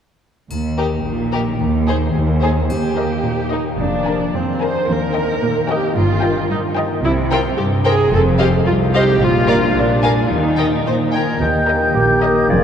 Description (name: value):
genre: cinematic, playful, whimsical film cue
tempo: 110 BPM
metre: 2/4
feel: straight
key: Eb major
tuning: A4 = 441 Hz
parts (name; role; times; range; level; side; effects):
- concert harp; arpeggios; 0.5-12.6 s; F2 to C5; -22 LUFS; left 4 dB; none
- rich chamber double bass section; bass; 0.5-12.6 s; F1 to Eb2; -24 LUFS; right 2 dB; none
- rich studio cello section; bass; 0.5-12.6 s; C2 to Eb3; -21 LUFS; right 2 dB; none
- triangle; percussion; 0.5-3.8 s; none; -41 LUFS; left 5 dB; none
- rich chamber violin section; melody; 0.8-12.4 s; Bb4 to Ab5; -27 LUFS; left 4 dB; none
- rich chamber violin section; second line; 0.8-12.4 s; G4 to F5; -24 LUFS; left 2 dB; none
- rich chamber viola section; accompaniment; 0.8-12.4 s; C4 to C5; -20 LUFS; right 1 dB; none
- warm oboe; second line; 11.1-12.6 s; D5 to Ab5; -19 LUFS; equal; none
- silver concert flute; second line; 11.4-12.6 s; G6 to Ab6; -24 LUFS; left 2 dB; none
- warm clarinet; second line; 11.4-12.6 s; Bb4; -22 LUFS; equal; none
- mellow bassoon; accompaniment; 11.4-12.6 s; Eb4 to G4; -22 LUFS; right 2 dB; none
- warm French horn section; sustained chords; 11.4-12.6 s; Bb3 to Ab4; -21 LUFS; left 3 dB; none
room: wet cathedral reverb, RT60 5.6 s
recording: dark, warm production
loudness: -14 LUFS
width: side -8 dB against mid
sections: 0.5-2.7 A section; 2.7-11.4 B section; 11.4-12.6 B section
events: none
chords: 0.5 Eb; 1.6 Ab/Eb; 2.7 Eb; 3.8 Bb7/F; 4.9 Eb; 6.0 Eb/G; 7.0 C5; 8.1 F5; 9.2 Bb; 9.7 Bb7; 10.3 Eb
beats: | 0.51 1.05 | 1.60 2.14 | 2.70 3.25 | 3.79 4.34 | 4.88 5.42 | 5.96 6.50 | 7.04 7.58 | 8.12 8.66 | 9.20 9.75 | 10.30 10.85 | 11.40 11.95 | 12.49